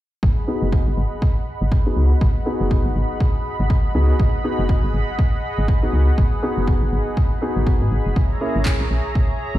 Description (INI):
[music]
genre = deep house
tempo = 121 BPM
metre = 4/4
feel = swing 59% on 16ths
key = G# minor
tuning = A4 = 440 Hz
[part]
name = warm analog pad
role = sustained chords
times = 0.2-9.6 s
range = G#4 to B5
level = -28 LUFS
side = right 1 dB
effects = chorus, sidechain pumping
[part]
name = woody FM bass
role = bass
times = 0.2-9.6 s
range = F#1 to G#2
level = -19 LUFS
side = equal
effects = sidechain pumping
[part]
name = electronic kick drum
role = drums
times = 0.2-9.3 s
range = none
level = -19 LUFS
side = equal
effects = none
[part]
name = felt-muted upright piano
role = stabs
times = 0.5-8.6 s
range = A#3 to G#4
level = -26 LUFS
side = left 1 dB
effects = sidechain pumping, low-pass filter, tape echo
[part]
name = electronic handclaps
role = drums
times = 8.7-8.8 s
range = none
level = -29 LUFS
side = equal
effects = none
[sound]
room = digital ambience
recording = played on a big sound system in a bare room, stone room reverb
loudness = -17 LUFS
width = side -14 dB against mid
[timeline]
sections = 0.2-9.6 A section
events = filter sweep on FM bass 0.2-9.6; filter sweep on felt piano 0.2-9.6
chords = 0.2 G#m7; 8.2 A#m7b5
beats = | 0.23 0.72 1.22 1.72 | 2.21 2.71 3.20 3.70 | 4.20 4.69 5.19 5.68 | 6.18 6.67 7.17 7.67 | 8.16 8.66 9.15